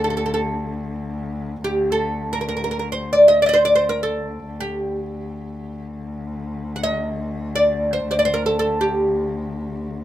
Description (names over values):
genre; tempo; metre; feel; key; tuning
Arabic maqam ensemble; free time; none; none; D maqam hijaz; A4 = 441 Hz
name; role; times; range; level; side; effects
oud; melody; 0.0-9.9 s; G4 to F#5; -18 LUFS; equal; none
dark cello; drone; 0.0-10.0 s; D2; -28 LUFS; left 2 dB; none
room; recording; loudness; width
light reverb; minimal, uncompressed stereo recording; -18 LUFS; side -13 dB against mid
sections
0.0-10.0 A section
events
none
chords
none